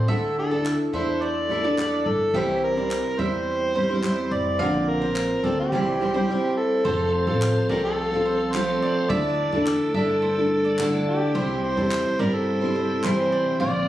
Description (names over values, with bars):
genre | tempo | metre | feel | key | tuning
acoustic pop | 106 BPM | 4/4 | straight | unclear | A4 = 440 Hz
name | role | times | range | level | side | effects
overdriven harmonica | melody | 0.0-13.9 s | G4 to D5 | -25 LUFS | equal | none
fingerpicked steel-string acoustic guitar | accompaniment | 0.0-13.9 s | Bb2 to C5 | -24 LUFS | equal | double-tracked left and right
upright bass | bass | 0.0-13.9 s | F1 to G2 | -29 LUFS | equal | none
mandolin | arpeggios | 0.1-13.9 s | A4 to F5 | -35 LUFS | right 3 dB | none
group handclap | percussion | 0.7-13.2 s | none | -34 LUFS | left 1 dB | none
tonewheel organ | sustained chords | 6.9-13.9 s | C3 to A4 | -32 LUFS | equal | chorus vibrato, fast rotary speaker
room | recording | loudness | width
moderate studio reverb, RT60 0.8 s | recorded on a phone in the room, studio reverb, compression | -21 LUFS | side -13 dB against mid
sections
0.0-6.8 A section; 6.8-13.9 B section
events
none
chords
0.1 Dsus2; 2.3 C; 4.6 Bbadd9; 5.7 C; 6.8 F; 9.1 Dsus2; 11.4 C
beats
| 0.09 0.65 1.21 1.78 | 2.34 2.90 3.47 4.03 | 4.59 5.16 5.72 6.29 | 6.85 7.41 7.97 8.54 | 9.10 9.66 10.23 10.79 | 11.35 11.91 12.47 13.04 | 13.60